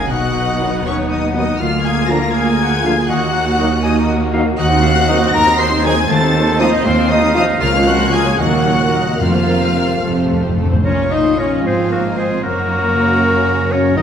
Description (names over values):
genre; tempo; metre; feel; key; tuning
classical; 72-81 BPM (dotted quarters); 6/8; rubato; Eb minor, Bb minor from 4.6 s; A4 = 440 Hz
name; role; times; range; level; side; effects
warm symphonic violin section; melody; 0.0-14.0 s; Ab5 to C7; -23 LUFS; left 4 dB; none
silver concert flute; second line; 0.0-10.6 s; C5 to C6; -24 LUFS; left 1 dB; none
warm clarinet; second line; 0.0-14.0 s; Bb4 to Ab5; -22 LUFS; left 1 dB; none
warm symphonic violin section; second line; 0.0-14.0 s; F4 to C6; -23 LUFS; left 2 dB; none
warm symphonic viola section; accompaniment; 0.0-14.0 s; Gb3 to Db5; -22 LUFS; right 1 dB; none
concert harp; arpeggios; 0.0-14.0 s; Gb2 to C6; -24 LUFS; left 6 dB; none
mellow trumpet section; stabs; 0.0-10.5 s; C4 to C5; -22 LUFS; right 1 dB; none
rich studio cello section; bass; 0.0-14.0 s; Db2 to B2; -22 LUFS; right 3 dB; none
rich symphonic double bass section; bass; 0.0-14.0 s; F1 to D#2; -22 LUFS; right 3 dB; none
mellow French horn section; sustained chords; 0.6-14.0 s; Bb3 to Bb4; -22 LUFS; left 3 dB; none
warm trombone section; sustained chords; 0.6-14.0 s; Bb2 to F4; -24 LUFS; right 3 dB; none
timpani; percussion; 9.2-10.8 s; F2; -20 LUFS; equal; none
warm oboe; second line; 10.8-14.0 s; Gb4 to C5; -26 LUFS; right 1 dB; none
room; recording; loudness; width
wet scoring stage reverb, RT60 1.9 s; none; -12 LUFS; side -8 dB against mid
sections
0.0-10.8 A section; 10.8-14.0 B section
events
timpani fill 10.0-10.8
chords
0.1 B; 1.6 Bb/D; 3.1 Ebm; 4.6 Cdim/Eb; 6.1 F7/Eb; 7.6 Bbm/Db; 8.4 Ebm; 9.2 Fsus4; 10.0 F; 10.8 Bbm; 11.7 Fm/Ab; 12.4 Gb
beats
| 0.10 0.86 | 1.60 2.35 | 3.10 3.84 | 4.59 5.34 | 6.10 6.85 | 7.61 8.40 | 9.21 10.03 | 10.85 11.65 | 12.43 13.20 | 13.97